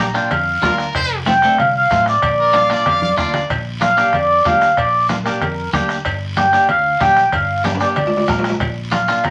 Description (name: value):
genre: latin, cumbia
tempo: 188 BPM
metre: 4/4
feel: straight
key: Bb major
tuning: A4 = 439 Hz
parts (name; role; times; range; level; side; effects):
- mellow accordion; melody; 0.0-9.3 s; Bb4 to Bb5; -17 LUFS; equal; none
- clean electric guitar; accompaniment; 0.0-9.3 s; A3 to Bb4; -23 LUFS; equal; none
- fingered electric bass; bass; 0.0-9.3 s; F1 to F2; -29 LUFS; equal; none
- bombo; percussion; 0.1-9.3 s; none; -28 LUFS; equal; none
- guiro; percussion; 0.1-9.3 s; none; -36 LUFS; equal; none
- congas; percussion; 0.3-9.3 s; none; -30 LUFS; equal; none
- cowbell and timbales; percussion; 0.3-9.3 s; none; -26 LUFS; equal; none
- brilliant trumpet; second line; 0.6-3.5 s; Bb4 to F5; -25 LUFS; equal; none
room: wet studio ambience, RT60 0.5 s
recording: none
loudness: -16 LUFS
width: mono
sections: 0.0-3.5 A section; 3.5-9.3 A section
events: drum fill 3.0-3.5, 7.6-8.6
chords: 0.0 Bb; 1.0 F; 2.2 Bb; 6.1 Gm; 8.6 Bb